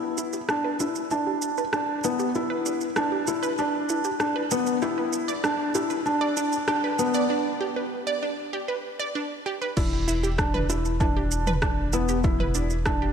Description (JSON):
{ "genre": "piano and strings electronica", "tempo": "97 BPM", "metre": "4/4", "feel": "straight", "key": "E minor", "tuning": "A4 = 440 Hz", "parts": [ { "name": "felt-muted upright piano", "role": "riff", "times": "0.0-13.1 s", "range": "B3 to E4", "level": "-26 LUFS", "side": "left 1 dB", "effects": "ping-pong delay" }, { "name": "wide unison pluck", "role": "arpeggios", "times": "0.2-13.1 s", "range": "D4 to D5", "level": "-30 LUFS", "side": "right 3 dB", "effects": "sidechain pumping, ping-pong delay" }, { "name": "deep house drum kit", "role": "drums", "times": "0.2-13.0 s", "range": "crash cymbal, rim click, shaker, toms", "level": "-32 LUFS", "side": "right 2 dB", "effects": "overdrive" }, { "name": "round analog bass", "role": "bass", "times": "9.8-13.1 s", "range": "E1", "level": "-27 LUFS", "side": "equal", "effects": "sidechain pumping" }, { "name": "electronic kick drum", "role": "drums", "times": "9.8-13.0 s", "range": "none", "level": "-27 LUFS", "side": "equal", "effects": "overdrive" } ], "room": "wet lush hall reverb, RT60 2.9 s", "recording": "none", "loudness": "-23 LUFS", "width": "side -7 dB against mid", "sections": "0.0-9.8 A section; 9.8-13.1 B section", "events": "build-up 0.0-9.8; filter sweep on synth arpeggio sound 0.0-9.8; break 7.3-9.8; drop 9.8-13.1", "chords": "0.0 Em7" }